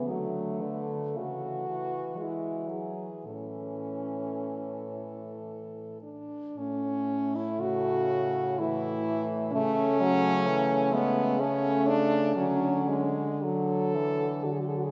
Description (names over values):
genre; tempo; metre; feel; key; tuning
classical, lyrical piece for horn quartet; 53-66 BPM; 3/4; rubato; A major; A4 = 440 Hz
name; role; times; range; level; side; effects
warm French horn; melody; 0.0-14.9 s; B3 to B4; -33 LUFS; equal; none
mellow French horn; second line; 0.0-14.9 s; F#3 to F#4; -37 LUFS; equal; none
warm French horn; accompaniment; 0.0-14.9 s; C#3 to A3; -36 LUFS; equal; none
mellow French horn; bass; 0.0-14.9 s; A2 to E3; -37 LUFS; equal; none
room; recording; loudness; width
wet church reverb, RT60 3.1 s; recorded in a church or concert hall, nothing above 7.7 kHz; -29 LUFS; mono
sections
0.0-6.6 A section; 6.6-14.9 A section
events
none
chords
0.1 D; 1.2 A/C#; 2.2 E; 3.3 A; 9.5 A/C#; 12.4 D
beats
| 0.11 1.18 2.20 | 3.27 4.38 5.49 | 6.57 7.61 8.60 | 9.54 10.46 11.40 | 12.35 13.44 14.45